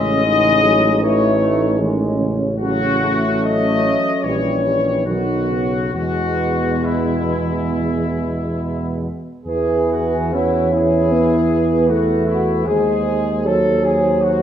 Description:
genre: classical, hymn-like piece for brass band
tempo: 66-79 BPM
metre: 4/4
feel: rubato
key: E major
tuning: A4 = 440 Hz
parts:
  - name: clear trumpet section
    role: melody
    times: 0.0-14.4 s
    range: E4 to D#5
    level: -22 LUFS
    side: left 5 dB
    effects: none
  - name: dark French horn section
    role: second line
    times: 0.0-14.4 s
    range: B3 to B#4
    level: -24 LUFS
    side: right 4 dB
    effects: none
  - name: warm euphonium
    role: accompaniment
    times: 0.0-14.4 s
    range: B2 to C#4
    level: -21 LUFS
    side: right 2 dB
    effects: none
  - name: warm trombone section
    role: accompaniment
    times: 0.0-14.4 s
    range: F#3 to A4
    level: -23 LUFS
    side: left 2 dB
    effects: none
  - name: mellow tuba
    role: bass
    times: 0.0-14.4 s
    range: A1 to E2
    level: -21 LUFS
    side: equal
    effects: none
room: wet recital hall reverb, RT60 1.5 s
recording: none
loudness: -15 LUFS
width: side -9 dB against mid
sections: 0.0-9.5 A section; 9.5-14.4 A section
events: none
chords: 0.0 Amaj7; 2.6 F#m/A; 4.2 A#dim7; 5.1 B; 5.9 E; 12.7 G#7/D#

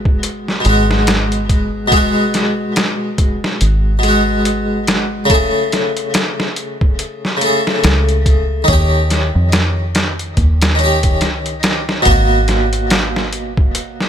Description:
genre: trip hop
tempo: 71 BPM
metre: 4/4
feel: swing 58% on 16ths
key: G# phrygian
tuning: A4 = 440 Hz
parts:
  - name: harpsichord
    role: accompaniment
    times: 0.0-14.1 s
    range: B2 to G#4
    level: -16 LUFS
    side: left 1 dB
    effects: tremolo, tape echo
  - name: deep dub fingered electric bass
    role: bass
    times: 0.0-14.1 s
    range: G#1 to E#2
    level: -16 LUFS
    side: equal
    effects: none
  - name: trip hop sampler-style drum kit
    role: drums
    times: 0.1-14.1 s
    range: hi-hat, kick drum, snare drum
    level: -16 LUFS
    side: equal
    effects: none
room: light reverb, digital ambience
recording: none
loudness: -12 LUFS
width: side -9 dB against mid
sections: 0.0-12.1 A section; 12.1-14.1 B section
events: none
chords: 0.0 G#m7; 5.3 Amaj7; 8.7 D#7; 12.1 G#m9

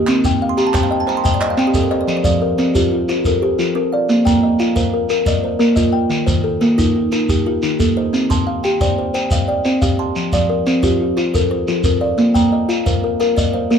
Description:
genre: southern african traditional, mbira-style interlocking cycle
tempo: 119 BPM (dotted quarters)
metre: 12/8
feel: straight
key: F mixolydian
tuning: A4 = 440 Hz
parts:
  - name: kalimba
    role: arpeggios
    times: 0.0-13.8 s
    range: Eb3 to A5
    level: -16 LUFS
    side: left 2 dB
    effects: none
  - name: kalimba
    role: arpeggios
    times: 0.0-13.8 s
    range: Eb3 to C6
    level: -21 LUFS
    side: right 5 dB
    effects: none
  - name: group handclap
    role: percussion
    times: 0.1-2.0 s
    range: none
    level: -29 LUFS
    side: right 3 dB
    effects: none
  - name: shekere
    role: percussion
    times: 0.1-13.8 s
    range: none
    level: -20 LUFS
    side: left 1 dB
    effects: none
room: moderate small room reverb, RT60 0.5 s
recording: dark, warm production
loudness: -14 LUFS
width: side -7 dB against mid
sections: 0.0-2.1 A section; 2.1-13.8 A section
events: kalimba fill 0.3-2.1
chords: 0.1 Cm; 2.1 F; 4.1 Bb; 6.1 Eb; 8.1 Cm; 10.2 F; 12.2 Bb

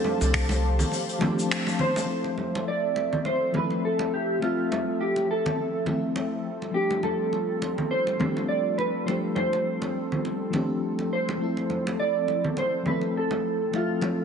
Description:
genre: sunset chillout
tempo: 103 BPM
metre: 4/4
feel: swing 56% on 16ths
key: F major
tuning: A4 = 440 Hz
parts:
  - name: mellow electric guitar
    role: melody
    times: 0.0-14.2 s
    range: F4 to D5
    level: -27 LUFS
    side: right 2 dB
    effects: analog chorus, tape echo
  - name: mellow FM electric piano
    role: accompaniment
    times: 0.0-14.2 s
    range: F3 to E5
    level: -30 LUFS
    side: left 3 dB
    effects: chorus, auto-pan, cassette tape, tape echo
  - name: airy breathy pad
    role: sustained chords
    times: 0.0-14.2 s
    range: F3 to A5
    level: -32 LUFS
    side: left 1 dB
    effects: chorus, vintage 12-bit sampler grit
  - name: congas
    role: percussion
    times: 0.0-14.2 s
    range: none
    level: -32 LUFS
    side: right 2 dB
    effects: none
  - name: warm sub bass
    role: bass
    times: 0.2-0.8 s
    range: C2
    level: -24 LUFS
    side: equal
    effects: none
  - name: soft brush drum kit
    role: drums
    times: 0.2-2.1 s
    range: finger snaps, hi-hat, shaker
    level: -31 LUFS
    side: left 1 dB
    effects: none
  - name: electronic kick drum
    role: drums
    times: 0.3-0.5 s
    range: none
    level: -32 LUFS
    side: equal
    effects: none
room: light reverb, small room ambience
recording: nothing above 10.7 kHz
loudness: -24 LUFS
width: side -6 dB against mid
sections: 0.0-2.1 A section; 2.1-14.2 B section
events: band accent 1.5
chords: 0.0 G9sus4; 2.1 Fmaj7; 6.5 G9sus4; 11.4 Fmaj7

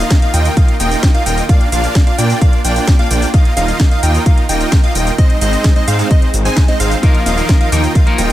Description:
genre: EDM, festival progressive house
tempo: 130 BPM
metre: 4/4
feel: straight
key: Eb major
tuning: A4 = 439 Hz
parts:
  - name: lush unison pad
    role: sustained chords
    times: 0.0-8.3 s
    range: Eb3 to Bb4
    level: -26 LUFS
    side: right 2 dB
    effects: chorus, phaser, sidechain pumping
  - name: plucky unison lead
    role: arpeggios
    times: 0.0-8.3 s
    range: Eb5 to Ab5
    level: -21 LUFS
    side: equal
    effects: sidechain pumping, dub echo
  - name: supersaw chords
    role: riff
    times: 0.0-8.3 s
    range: Ab3 to Ab5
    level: -18 LUFS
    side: right 1 dB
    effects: sidechain pumping, dub echo
  - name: wide detuned saw bass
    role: bass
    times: 0.0-8.3 s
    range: Eb1 to Bb2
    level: -16 LUFS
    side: equal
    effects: chorus, sidechain pumping
  - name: electronic kick drum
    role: drums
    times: 0.1-8.0 s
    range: none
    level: -10 LUFS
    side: equal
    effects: none
  - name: house drum kit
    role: drums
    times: 0.1-8.3 s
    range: cabasa, hi-hat, snare drum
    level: -22 LUFS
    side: equal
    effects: none
  - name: clean electric guitar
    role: accompaniment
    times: 7.0-8.2 s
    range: F3 to Bb4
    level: -20 LUFS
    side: left 3 dB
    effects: sidechain pumping
room: little or no reverb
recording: none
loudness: -10 LUFS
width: side -14 dB against mid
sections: 0.0-8.3 A section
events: none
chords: 0.0 Ebsus2; 1.5 Bb; 3.3 Ebsus2; 5.2 Ab; 7.0 Ebsus2

